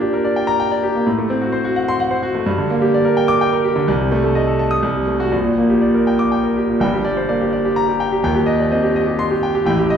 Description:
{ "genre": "classical, virtuoso piano study", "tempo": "126 BPM", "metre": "3/4", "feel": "rubato", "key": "G minor", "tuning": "A4 = 440 Hz", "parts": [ { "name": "clear concert grand piano", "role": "solo", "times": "0.0-10.0 s", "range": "Eb1 to Eb6", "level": "-15 LUFS", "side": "equal", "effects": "none" } ], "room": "wet recital hall reverb, RT60 1.7 s", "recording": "heard from further back in the room", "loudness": "-15 LUFS", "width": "side -8 dB against mid", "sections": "0.0-6.8 A section; 6.8-10.0 A section", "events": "none", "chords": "0.0 Gm/Bb; 1.1 F#dim/A; 2.5 Gm; 3.9 Adim/C; 4.8 F#dim/C; 5.3 Gm/Bb; 6.8 Gm; 8.2 Eb6" }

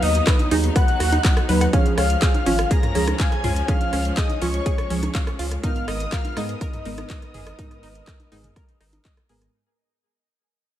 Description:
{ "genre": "progressive house", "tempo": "123 BPM", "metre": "4/4", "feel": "straight", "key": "unclear", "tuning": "A4 = 440 Hz", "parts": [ { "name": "soft octave-layered synth lead", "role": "melody", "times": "0.0-9.1 s", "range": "Db5 to Bb5", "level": "-28 LUFS", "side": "left 3 dB", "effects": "chorus, phaser, dub echo" }, { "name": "soft supersaw", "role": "second line", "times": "0.0-9.0 s", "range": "Db6 to Bb6", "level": "-34 LUFS", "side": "equal", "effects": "sidechain pumping, dub echo" }, { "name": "warm studio string section", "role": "sustained chords", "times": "0.0-9.5 s", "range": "F3 to Bb4", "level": "-33 LUFS", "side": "left 2 dB", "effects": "sidechain pumping" }, { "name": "analog pluck", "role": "arpeggios", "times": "0.0-9.4 s", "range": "Db4 to F#6", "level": "-30 LUFS", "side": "right 2 dB", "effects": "chorus, sidechain pumping, dub echo" }, { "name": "deep mellow chord stab", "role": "stabs", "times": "0.0-9.5 s", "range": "Ab2 to B4", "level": "-27 LUFS", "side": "right 2 dB", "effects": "chorus, cassette tape, sidechain pumping" }, { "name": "saturated sub bass", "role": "bass", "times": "0.0-9.5 s", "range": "Ab1 to Ab2", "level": "-23 LUFS", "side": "equal", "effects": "sidechain pumping" }, { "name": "deep house drum kit", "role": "drums", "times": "0.0-9.5 s", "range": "handclaps, hi-hat", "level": "-30 LUFS", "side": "equal", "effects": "overdrive, sidechain pumping on hats, studio reverb, sidechain pumping on cymbals" }, { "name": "electronic kick drum", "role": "drums", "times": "0.3-9.1 s", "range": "none", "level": "-21 LUFS", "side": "equal", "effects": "overdrive, studio reverb" }, { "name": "punchy analog drum machine", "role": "percussion", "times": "0.3-9.5 s", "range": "congas, rim click, toms", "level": "-32 LUFS", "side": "right 1 dB", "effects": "sidechain pumping on snare, studio reverb, sidechain pumping on perc, sidechain pumping on toms" } ], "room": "digital ambience", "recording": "none", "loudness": "-18 LUFS", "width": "side -12 dB against mid", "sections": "0.0-9.5 A section", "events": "drop 0.0-9.5; fade-out 1.7-9.5", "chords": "0.0 B/D#; 1.7 Db; 5.6 Abmadd9" }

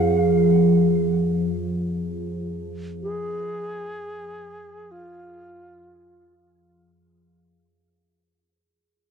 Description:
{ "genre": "world meditative, free-time meditation music", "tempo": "free time", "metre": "none", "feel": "none", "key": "F minor", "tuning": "A4 = 440 Hz", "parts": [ { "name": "deep dark ambient pad", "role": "drone", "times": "0.0-6.7 s", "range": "F2 to F3", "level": "-22 LUFS", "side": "left 1 dB", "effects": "chorus, built-in reverb" }, { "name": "bronze singing bowl", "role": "texture", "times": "0.0-7.1 s", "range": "Ab4", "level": "-24 LUFS", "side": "right 4 dB", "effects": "none" }, { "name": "alto flute", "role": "melody", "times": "3.0-6.3 s", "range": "F4 to Ab4", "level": "-34 LUFS", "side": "equal", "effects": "tape echo" } ], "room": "moderate studio reverb, RT60 0.5 s", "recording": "dry, gritty hardware recording, cassette tape", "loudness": "-20 LUFS", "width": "side -6 dB against mid", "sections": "0.0-6.5 A section", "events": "fade-out 0.0-6.5", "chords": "none" }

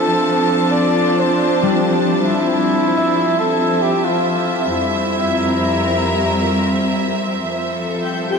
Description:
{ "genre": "ambient", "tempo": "68 BPM", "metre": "3/4", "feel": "straight", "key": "unclear", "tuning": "A4 = 440 Hz", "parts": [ { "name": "mellow flugelhorn", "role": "melody", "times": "0.0-6.9 s", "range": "E4 to D5", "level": "-20 LUFS", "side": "equal", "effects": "shimmer reverb, tape echo" }, { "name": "rich symphonic string section", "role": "sustained chords", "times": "0.0-8.4 s", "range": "F2 to A5", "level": "-17 LUFS", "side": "equal", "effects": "shimmer reverb" }, { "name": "concert harp", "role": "arpeggios", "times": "0.0-5.7 s", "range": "G3 to E5", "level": "-23 LUFS", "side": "left 1 dB", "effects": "shimmer reverb, tape echo" }, { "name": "twinkling granular texture", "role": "texture", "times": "8.0-8.4 s", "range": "G4 to G5", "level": "-22 LUFS", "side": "left 6 dB", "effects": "built-in reverb" } ], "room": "wet huge ambient reverb, RT60 8.8 s", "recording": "none", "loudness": "-15 LUFS", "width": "side -5 dB against mid", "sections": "0.0-7.4 A section", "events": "none", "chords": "0.0 Dm7/F; 4.7 C7/F; 7.4 Fmaj7" }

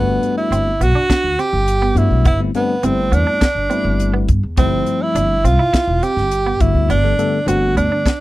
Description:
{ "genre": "electric jazz fusion", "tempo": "103 BPM", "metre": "4/4", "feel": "straight", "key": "G major", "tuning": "A4 = 438 Hz", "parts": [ { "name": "breathy tenor saxophone", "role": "melody", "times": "0.0-8.2 s", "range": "B3 to G4", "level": "-18 LUFS", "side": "right 2 dB", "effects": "slapback echo" }, { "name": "bell-like tine electric piano", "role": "accompaniment", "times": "0.0-8.1 s", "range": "D3 to A4", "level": "-21 LUFS", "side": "left 5 dB", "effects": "auto-pan" }, { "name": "semi-hollow electric guitar", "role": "stabs", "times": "0.0-8.2 s", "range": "B3 to E4", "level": "-25 LUFS", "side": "right 5 dB", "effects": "analog chorus" }, { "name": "upright bass", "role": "bass", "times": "0.0-8.1 s", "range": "E1 to G2", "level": "-18 LUFS", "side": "equal", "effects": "none" }, { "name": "tight funk drum kit", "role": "drums", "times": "0.2-8.2 s", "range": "hi-hat, kick drum, snare drum", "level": "-18 LUFS", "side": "equal", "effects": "none" } ], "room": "little or no reverb", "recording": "dry, close 1970s-style studio recording", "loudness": "-14 LUFS", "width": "side -17 dB against mid", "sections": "0.0-8.2 A section", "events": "none", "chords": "0.0 Gmaj13; 2.3 Am9/G; 4.6 Fmaj9/G; 6.6 Gmaj9" }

